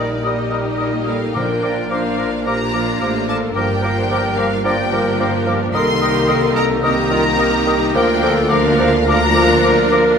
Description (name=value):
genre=classical, dramatic, fast romantic movement for symphony orchestra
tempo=109 BPM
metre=4/4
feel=straight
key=Bb major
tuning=A4 = 440 Hz
part: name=rich symphonic violin section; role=melody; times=0.0-9.9 s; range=D5 to C6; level=-23 LUFS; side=left 2 dB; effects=none
part: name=clear clarinet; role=second line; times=0.0-10.2 s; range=F4 to D5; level=-23 LUFS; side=left 1 dB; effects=none
part: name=small flute group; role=second line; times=0.0-10.0 s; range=D6 to Eb6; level=-25 LUFS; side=left 5 dB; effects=none
part: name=warm oboe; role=second line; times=0.0-10.0 s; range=Bb4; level=-26 LUFS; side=right 2 dB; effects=none
part: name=warm symphonic violin section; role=second line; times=0.0-10.2 s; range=F4 to Bb4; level=-24 LUFS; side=left 2 dB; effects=none
part: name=clear symphonic viola section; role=accompaniment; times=0.0-10.2 s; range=Eb3 to Eb4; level=-23 LUFS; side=right 1 dB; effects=none
part: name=mellow bassoon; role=accompaniment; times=0.0-10.0 s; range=Eb3 to G3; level=-24 LUFS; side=right 3 dB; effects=none
part: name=mellow French horn section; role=sustained chords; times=0.0-10.2 s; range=Eb3 to Eb4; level=-23 LUFS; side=left 2 dB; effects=none
part: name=rich symphonic cello section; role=bass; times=0.0-10.2 s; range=C2 to Bb2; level=-25 LUFS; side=right 1 dB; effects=none
part: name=warm symphonic double bass section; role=bass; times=0.0-10.2 s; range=G1 to D2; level=-25 LUFS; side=right 4 dB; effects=none
part: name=timpani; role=percussion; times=1.4-2.1 s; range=Bb2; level=-32 LUFS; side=left 1 dB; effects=none
room=wet scoring stage reverb, RT60 1.5 s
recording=minimal, uncompressed stereo recording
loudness=-14 LUFS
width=side -6 dB against mid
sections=0.0-10.2 A section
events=none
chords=0.0 Eb/Bb; 1.4 Bb; 3.6 Gm7; 5.8 Cm7; 8.0 Bb/D